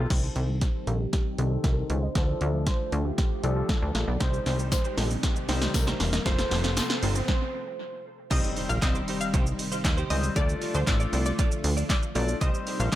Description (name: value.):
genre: dance-pop.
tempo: 117 BPM.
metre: 4/4.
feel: straight.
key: C dorian.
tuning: A4 = 437 Hz.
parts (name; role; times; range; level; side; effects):
warm velvety synth lead; melody; 0.0-8.1 s; G4 to C5; -36 LUFS; right 1 dB; chorus, low-pass filter, analog delay.
clear concert grand piano; accompaniment; 0.0-13.0 s; Eb3 to D5; -35 LUFS; left 5 dB; sidechain pumping, low-pass filter.
direct-recorded clean electric guitar; riff; 0.0, 4.2-13.0 s; Eb4 to D5; -38 LUFS; right 6 dB; ensemble chorus, low-pass filter, analog delay.
plucky analog bass; bass; 0.0-13.0 s; E1 to Eb2; -27 LUFS; equal; sidechain pumping.
soft string machine; sustained chords; 0.1-13.0 s; C3 to F4; -37 LUFS; equal; none.
wide unison pluck; arpeggios; 0.1-7.2 s; D3 to F5; -42 LUFS; right 2 dB; none.
punchy analog drum machine; drums; 0.1-13.0 s; crash cymbal, handclaps, hi-hat, kick drum, shaker, snare drum; -27 LUFS; equal; analog delay.
riser and impact; sound effects; 2.1-10.4 s; none; -39 LUFS; right 1 dB; none.
tambourine; percussion; 4.7-6.9 s; none; -38 LUFS; left 10 dB; none.
analog pluck; melody; 8.3-13.0 s; C5 to F5; -35 LUFS; equal; chorus, sidechain pumping, analog delay.
room: digital ambience.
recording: echo-heavy mix.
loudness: -24 LUFS.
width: side -14 dB against mid.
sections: 0.1-8.3 A section; 8.3-13.0 B section.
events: build-up 0.1-8.3; drum fill 0.1-7.3; filter sweep 0.1-8.3; stop 7.3-8.3; drop 8.3-13.0; impact 8.3-10.4.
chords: 0.1 Cm; 2.2 Dm; 4.2 Cm; 6.3 F; 8.3 Cm; 10.4 Dm; 12.4 Cm.